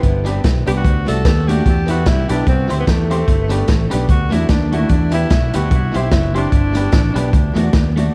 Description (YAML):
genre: ska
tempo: 148 BPM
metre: 4/4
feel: swing 58% on 8ths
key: G major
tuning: A4 = 439 Hz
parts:
  - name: breathy tenor saxophone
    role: melody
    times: 0.0-7.3 s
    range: A3 to A4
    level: -25 LUFS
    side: equal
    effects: tape echo
  - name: fingered electric bass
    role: bass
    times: 0.0-8.1 s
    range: F#1 to E2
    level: -20 LUFS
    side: equal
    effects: none
  - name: crunchy breakbeat drum kit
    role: drums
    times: 0.0-8.1 s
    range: hi-hat, kick drum, snare drum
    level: -19 LUFS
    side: equal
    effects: none
  - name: clean electric guitar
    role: accompaniment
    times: 0.2-8.1 s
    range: A3 to C5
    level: -26 LUFS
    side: equal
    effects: warbly pitch drift
  - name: tack piano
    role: stabs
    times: 0.3-8.1 s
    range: A3 to G4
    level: -28 LUFS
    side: equal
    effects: tape echo
room: light reverb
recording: dark, warm production, vinyl crackle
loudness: -16 LUFS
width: mono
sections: 0.0-8.1 A section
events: tenor saxophone solo 0.0-8.1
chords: 0.0 G; 0.8 D; 1.7 Em; 2.5 C; 3.3 G; 4.1 D; 4.9 Em; 5.7 C; 6.5 G; 7.3 D